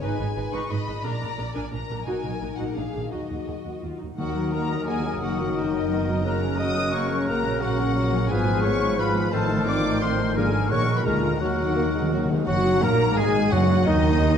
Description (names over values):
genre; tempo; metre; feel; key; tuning
classical, dramatic, fast romantic movement for symphony orchestra; 174 BPM; 3/4; straight; Eb minor; A4 = 440 Hz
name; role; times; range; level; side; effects
warm symphonic violin section; melody; 0.0-14.4 s; Eb5 to Eb6; -31 LUFS; left 4 dB; none
warm symphonic violin section; second line; 0.0-14.4 s; Bb3 to Bb5; -36 LUFS; left 3 dB; none
dark symphonic viola section; accompaniment; 0.0-14.4 s; D3 to Cb5; -31 LUFS; right 2 dB; none
concert harp; arpeggios; 0.0-14.4 s; Gb2 to Eb5; -30 LUFS; left 9 dB; none
warm studio cello section; bass; 0.0-14.4 s; Eb2 to Eb3; -30 LUFS; right 3 dB; none
warm studio double bass section; bass; 0.0-14.4 s; Gb1 to Eb2; -30 LUFS; right 4 dB; none
clear clarinet; second line; 4.2-14.4 s; Eb4 to Eb5; -30 LUFS; equal; none
mellow concert flute; second line; 4.2-14.4 s; Eb5 to Gb6; -34 LUFS; left 2 dB; none
warm oboe; second line; 4.2-14.4 s; Eb4 to C5; -34 LUFS; right 1 dB; none
mellow bassoon; accompaniment; 4.2-14.4 s; Db3 to Bb3; -30 LUFS; right 1 dB; none
warm French horn section; sustained chords; 4.2-14.4 s; Eb3 to Gb4; -31 LUFS; left 3 dB; none
timpani; percussion; 4.2-4.7, 11.4-14.0 s; Gb2 to Eb3; -29 LUFS; equal; none
mellow trumpet; stabs; 12.5-14.4 s; Eb4 to Bb4; -31 LUFS; right 2 dB; none
room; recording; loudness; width
wet concert hall reverb, RT60 1.9 s; dark, warm production; -21 LUFS; side -8 dB against mid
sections
0.0-4.2 A section; 4.2-12.5 B section; 12.5-14.4 B section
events
timpani fill 11.4-12.5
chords
0.0 Fm7b5/Ab; 1.0 Bb; 2.1 B; 2.4 Ebm/Bb; 3.1 Ebm; 5.2 Ebm/Gb; 6.3 Gb; 7.3 Gb/Bb; 8.3 Fdim/Ab; 9.3 F7/A; 10.4 Bb7/Ab; 10.7 Ebm/Bb; 11.1 Bb7/D; 11.4 Ebm; 12.5 Ebm/Gb